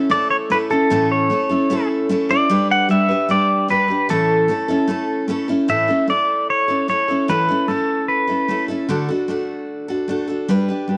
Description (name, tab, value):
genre	country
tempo	150 BPM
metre	4/4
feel	straight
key	A mixolydian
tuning	A4 = 440 Hz
part	picked steel-string acoustic guitar	accompaniment	0.0-11.0 s	A2 to B4	-22 LUFS	equal	none
part	pedal steel guitar	melody	0.1-8.6 s	A4 to F#5	-20 LUFS	equal	none
room	moderate plate reverb, RT60 2.5 s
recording	worn, warbling old tape, cassette tape, warbly pitch drift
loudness	-19 LUFS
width	mono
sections	0.0-5.7 A section; 5.7-11.0 B section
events	none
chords	0.0 A; 2.5 G; 4.1 A; 8.9 D